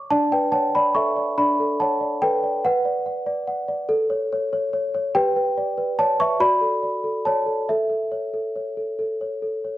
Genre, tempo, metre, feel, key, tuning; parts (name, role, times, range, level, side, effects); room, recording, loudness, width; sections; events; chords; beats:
classical, lullaby for celesta; 48 BPM (dotted quarters); 6/8; rubato; D major; A4 = 440 Hz
worn celesta; solo; 0.0-9.8 s; D4 to D6; -20 LUFS; equal
light reverb; dark, warm production; -20 LUFS; side -15 dB against mid
0.1-9.8 A section
0.1 D; 2.6 Bm; 3.9 F#m/A (rootless); 5.1 G; 6.4 D/F#; 7.7 A
| 0.09 1.37 | 2.64 3.89 | 5.15 6.41 | 7.68 9.00